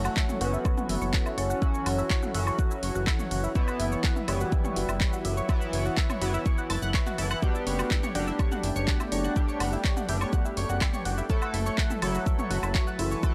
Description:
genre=melodic techno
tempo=124 BPM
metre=4/4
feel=straight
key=F# phrygian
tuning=A4 = 440 Hz
part: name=expressive synth lead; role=melody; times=0.0-13.3 s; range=E3 to D4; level=-38 LUFS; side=equal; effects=chorus, sidechain pumping, tape echo
part: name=dark detuned synth bell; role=second line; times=0.0-13.3 s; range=E4 to D5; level=-44 LUFS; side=equal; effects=none
part: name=warm analog pad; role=sustained chords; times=0.0-13.3 s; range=E3 to C#5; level=-41 LUFS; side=equal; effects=chorus, sidechain pumping
part: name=tight sequenced synth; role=arpeggios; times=0.0-13.3 s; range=E4 to A6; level=-37 LUFS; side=equal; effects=chorus, phaser, sidechain pumping, tape echo
part: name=sync-sweep polysynth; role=stabs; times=0.0-13.3 s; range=E3 to A4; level=-37 LUFS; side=equal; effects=chorus, sidechain pumping, tape echo
part: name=fat analog bass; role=bass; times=0.0-13.2 s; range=F#1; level=-32 LUFS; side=equal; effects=sidechain pumping
part: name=deep house drum kit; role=drums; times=0.0-13.3 s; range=handclaps, hi-hat, shaker, toms, woodblock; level=-36 LUFS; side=equal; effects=none
part: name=electronic kick drum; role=drums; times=0.2-13.3 s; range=none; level=-28 LUFS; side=equal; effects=none
room=digital ambience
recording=dry, gritty hardware recording, transformer saturation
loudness=-27 LUFS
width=mono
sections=0.0-13.3 A section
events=none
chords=0.0 F#m7; 3.6 Em/F#; 7.4 Gadd9/F#; 11.3 Asus2/F#

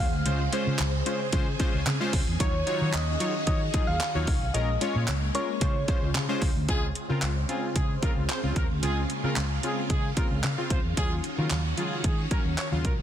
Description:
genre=dance-pop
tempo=112 BPM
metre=4/4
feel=straight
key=Db major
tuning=A4 = 441 Hz
part: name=soft struck synth lead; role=melody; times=0.0-6.4 s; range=C5 to F5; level=-32 LUFS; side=left 1 dB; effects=chorus
part: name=warm analog keys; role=accompaniment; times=0.0-12.9 s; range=Db3 to Db5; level=-32 LUFS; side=left 2 dB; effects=chorus, sidechain pumping
part: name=phased string machine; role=sustained chords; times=0.0-13.0 s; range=C3 to Ab4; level=-35 LUFS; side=right 1 dB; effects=ensemble chorus, phaser, sidechain pumping
part: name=vintage muted fingered electric bass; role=bass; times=0.0-13.0 s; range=Bb1 to Eb3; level=-29 LUFS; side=equal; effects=sidechain pumping
part: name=pop drum kit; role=drums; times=0.3-13.0 s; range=handclaps, hi-hat, kick drum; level=-28 LUFS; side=equal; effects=none
part: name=group handclap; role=percussion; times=0.8-6.3 s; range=none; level=-42 LUFS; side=right 5 dB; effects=none
part: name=warm horn section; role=melody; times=6.7-12.9 s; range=Ab3 to Db5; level=-35 LUFS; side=right 1 dB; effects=digital delay
room=light reverb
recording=dense, heavily limited modern master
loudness=-24 LUFS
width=side -10 dB against mid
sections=0.0-6.7 A section; 6.7-13.0 B section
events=none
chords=0.0 Dbmaj7; 2.4 Ebm9; 4.5 Bbm7; 5.6 Dbmaj7; 11.0 Ebm9

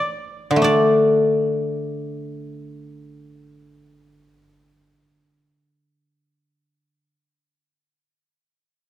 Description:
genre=chinese traditional, Chinese solo plucked strings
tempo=free time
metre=none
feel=none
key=unclear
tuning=A4 = 440 Hz
part: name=guzheng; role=solo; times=0.0-7.1 s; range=D3 to D5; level=-18 LUFS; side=left 1 dB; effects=none
room=light reverb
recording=dark, warm production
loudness=-16 LUFS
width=side -13 dB against mid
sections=0.6-7.4 A section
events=none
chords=none

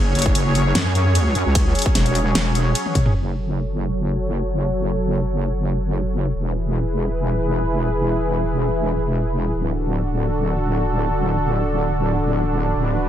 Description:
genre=heavy wobble dubstep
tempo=free time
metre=none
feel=none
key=F# minor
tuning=A4 = 441 Hz
part: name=supersaw pad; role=sustained chords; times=0.0-13.1 s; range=D3 to C#5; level=-23 LUFS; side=equal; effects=sidechain pumping, low-pass filter
part: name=wobble bass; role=bass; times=0.0-13.1 s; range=D1 to F#2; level=-21 LUFS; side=equal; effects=chorus, overdrive
part: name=big-room dance drum kit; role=drums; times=0.2-3.1 s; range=hi-hat, ride cymbal, snare drum, toms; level=-23 LUFS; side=equal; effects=none
part: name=electronic kick drum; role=drums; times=0.3-3.0 s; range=none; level=-20 LUFS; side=equal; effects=none
room=light reverb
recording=none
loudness=-18 LUFS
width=side -10 dB against mid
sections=0.0-3.2 A section; 3.2-13.1 B section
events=drop 0.0-3.2; drum fill 2.9-3.2; filter sweep on supersaw synth 3.2-13.1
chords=0.0 F#sus2; 3.2 F#m; 6.4 E; 9.6 D

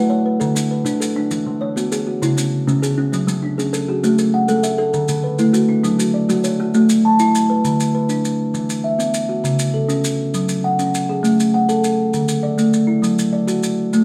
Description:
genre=southern african traditional, mbira-style interlocking cycle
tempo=133 BPM (dotted quarters)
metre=12/8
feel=straight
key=A major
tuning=A4 = 441 Hz
part: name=kalimba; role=arpeggios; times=0.0-14.0 s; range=C#3 to A5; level=-18 LUFS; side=equal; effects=none
part: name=kalimba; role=arpeggios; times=0.0-7.0 s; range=C#3 to F#5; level=-25 LUFS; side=equal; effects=none
part: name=maracas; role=percussion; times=0.4-14.0 s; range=none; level=-31 LUFS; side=equal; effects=none
room=wet studio reverb, RT60 0.9 s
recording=band playing live in one room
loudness=-18 LUFS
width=mono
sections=0.0-6.7 A section; 6.7-14.0 B section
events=none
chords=0.4 D5; 1.3 E; 2.2 C#m; 3.1 F#m; 4.0 A5; 4.9 D; 5.8 F#5; 6.7 A; 7.6 Bm/D; 8.5 E5; 9.4 F#m/C#; 10.3 F#5; 11.2 F#madd9/A; 12.1 D5; 13.0 Dadd9/F#

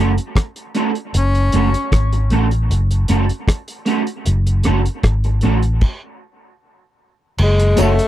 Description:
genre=dub reggae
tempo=77 BPM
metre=4/4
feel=straight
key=F# minor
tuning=A4 = 440 Hz
part: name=electric guitar at the edge of break-up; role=accompaniment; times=0.0-7.9 s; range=A3 to A4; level=-21 LUFS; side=right 4 dB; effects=analog chorus, dub echo
part: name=vintage muted fingered electric bass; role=bass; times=0.0-8.0 s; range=F#1 to A1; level=-15 LUFS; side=equal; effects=none
part: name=cloth-damped thuddy drum kit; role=drums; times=0.2-8.1 s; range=crash cymbal, hi-hat, kick drum, rim click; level=-20 LUFS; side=equal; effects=none
part: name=breathy tenor saxophone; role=melody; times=1.2-1.9, 7.4-8.1 s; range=G#3 to C#4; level=-20 LUFS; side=left 3 dB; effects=dub echo
part: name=dark upright piano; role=stabs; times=7.8-8.0 s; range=C#4 to C#5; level=-20 LUFS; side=left 6 dB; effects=none
part: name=tambourine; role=percussion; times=7.8-8.0 s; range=none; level=-31 LUFS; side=right 1 dB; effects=none
room=little or no reverb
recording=dry, close 1970s-style studio recording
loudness=-15 LUFS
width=side -13 dB against mid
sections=0.0-7.4 A section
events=stop 5.8-7.4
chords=0.0 F#m

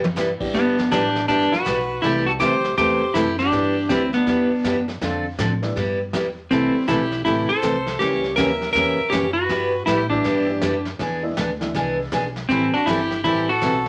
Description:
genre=country, western swing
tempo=161 BPM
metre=4/4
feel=swing 64% on 8ths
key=G major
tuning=A4 = 440 Hz
part: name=upright bass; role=bass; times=0.0-13.9 s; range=G1 to A2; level=-34 LUFS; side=equal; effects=none
part: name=vintage brush drum kit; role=drums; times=0.0-13.9 s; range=brushed snare drum, crash cymbal, hi-hat, kick drum, snare drum, toms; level=-32 LUFS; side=equal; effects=none
part: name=picked steel-string acoustic guitar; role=accompaniment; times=0.2-13.7 s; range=C3 to A4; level=-26 LUFS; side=equal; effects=none
part: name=dark upright piano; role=accompaniment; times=0.4-12.1 s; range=C#3 to G4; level=-33 LUFS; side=equal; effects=none
part: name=clean lap steel guitar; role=melody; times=0.5-13.9 s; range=B3 to A#4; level=-22 LUFS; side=equal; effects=none
part: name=clear fiddle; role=second line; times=0.5-13.9 s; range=D4 to E5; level=-31 LUFS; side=equal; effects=none
room=wet studio ambience, RT60 0.5 s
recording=none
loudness=-21 LUFS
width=mono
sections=0.5-13.9 A section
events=drum fill 0.0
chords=0.0 G6; 2.0 C6; 3.5 G6; 5.0 Dm7; 5.8 G6; 6.5 C6; 8.0 C#dim7; 9.5 G6; 11.0 E7; 12.5 Am7

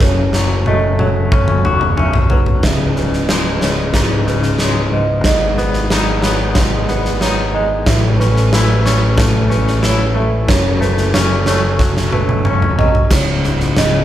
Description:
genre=post-rock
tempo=92 BPM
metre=4/4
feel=straight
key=C# minor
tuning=A4 = 440 Hz
part: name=pedal harmonium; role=sustained chords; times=0.0-13.1 s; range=D#3 to A4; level=-26 LUFS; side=right 1 dB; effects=none
part: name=felt-muted upright piano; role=arpeggios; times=0.0-14.0 s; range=B4 to E5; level=-23 LUFS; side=right 6 dB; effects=none
part: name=twangy electric guitar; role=arpeggios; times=0.0-14.0 s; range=C#2 to F#4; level=-18 LUFS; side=left 3 dB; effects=tremolo
part: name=growling fingered electric bass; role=bass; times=0.0-14.0 s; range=C#1 to A1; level=-18 LUFS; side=equal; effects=overdrive
part: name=huge arena drum kit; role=drums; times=0.0-13.9 s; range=crash cymbal, kick drum, snare drum, toms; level=-16 LUFS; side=equal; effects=none
room=moderate large studio reverb, RT60 1.1 s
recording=band playing live in one room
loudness=-12 LUFS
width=side -12 dB against mid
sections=0.0-2.6 A section; 2.6-13.1 B section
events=drum fill 0.0-2.6, 11.8-13.1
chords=0.0 F#m; 2.6 C#m; 5.3 G#m; 7.9 A; 10.5 F#m; 13.1 C#5

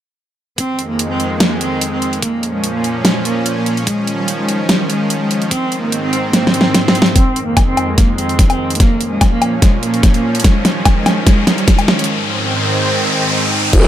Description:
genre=heavy wobble dubstep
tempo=146 BPM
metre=4/4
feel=swing 53% on 16ths, half-time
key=F minor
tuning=A4 = 439 Hz
part: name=warm cello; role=melody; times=0.6-12.1 s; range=G3 to C4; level=-19 LUFS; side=right 1 dB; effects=low-pass filter, tape echo
part: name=supersaw pad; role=sustained chords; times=0.6-13.9 s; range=F2 to Ab4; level=-20 LUFS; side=equal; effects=sidechain pumping, low-pass filter
part: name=dubstep drum kit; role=drums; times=0.6-13.8 s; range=crash cymbal, hi-hat, snare drum, woodblock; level=-15 LUFS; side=equal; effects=none
part: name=electronic kick drum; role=drums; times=0.6-13.8 s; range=none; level=-12 LUFS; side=equal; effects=high-pass filter on kick
part: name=riser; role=sound effects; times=8.9-13.7 s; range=none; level=-21 LUFS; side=left 2 dB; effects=none
part: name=growl bass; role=bass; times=13.7-13.9 s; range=F1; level=-11 LUFS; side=equal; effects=chorus, overdrive
room=light reverb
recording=none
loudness=-12 LUFS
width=side -11 dB against mid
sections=0.6-7.2 A section; 7.2-13.7 B section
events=drum fill 6.3-7.2, 7.2-12.1; build-up 7.2-13.7; filter sweep on supersaw synth 7.2-13.7; filter sweep on cello 7.2-13.7; riser 8.9-13.7; break 12.1-13.7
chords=0.6 Fm7; 2.2 Bbm; 3.9 Dbadd9; 5.5 Ab; 7.2 Fm7; 8.8 Bbm; 10.4 Dbadd9; 12.1 Ab

